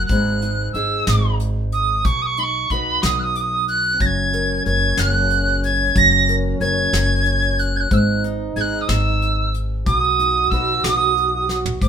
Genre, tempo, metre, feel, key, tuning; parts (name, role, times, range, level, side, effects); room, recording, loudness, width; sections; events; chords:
acoustic folk duo or small band; 61 BPM (dotted quarters); 6/8; straight; A4 = 440 Hz
tin whistle; melody; 0.0-11.9 s; B5 to A#6; -19 LUFS; right 3 dB
fingerpicked steel-string acoustic guitar; accompaniment; 0.0-11.9 s; G#2 to C#5; -26 LUFS; equal
upright bass; bass; 0.0-11.9 s; F#1 to B1; -22 LUFS; equal
soft brush drum kit; drums; 0.1-11.9 s; hi-hat, kick drum, snare drum, toms; -24 LUFS; left 1 dB
warm French horn; second line; 3.9-11.8 s; B#3 to F#4; -27 LUFS; right 1 dB
light reverb; minimal, uncompressed stereo recording; -16 LUFS; side -8 dB against mid
0.0-11.8 A section
drum fill 11.5-11.8
0.1 G#m; 2.0 B; 4.0 F#add9; 7.9 G#5; 9.9 B